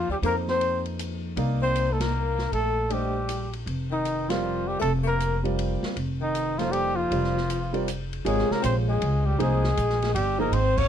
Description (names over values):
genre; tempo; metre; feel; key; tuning
modal jazz; 157 BPM; 3/4; swing 64% on 8ths; F mixolydian; A4 = 440 Hz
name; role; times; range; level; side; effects
mellow trumpet; melody; 0.0-10.9 s; Eb4 to Db5; -27 LUFS; equal; none
breathy tenor saxophone; second line; 0.0-10.9 s; Eb3 to Db4; -32 LUFS; left 8 dB; none
clear concert grand piano; accompaniment; 0.0-10.5 s; C3 to F5; -30 LUFS; right 2 dB; none
upright bass; bass; 0.0-10.9 s; F1 to F2; -27 LUFS; equal; none
open jazz drum kit; drums; 0.2-10.8 s; crash cymbal, hi-hat, kick drum, ride cymbal, snare drum; -36 LUFS; left 1 dB; none
room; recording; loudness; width
light reverb; dark, warm production; -23 LUFS; side -9 dB against mid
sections
0.0-8.2 A section; 8.2-10.9 B section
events
band accent 1.9, 4.2, 10.7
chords
0.0 F13sus4; 8.2 Abmaj9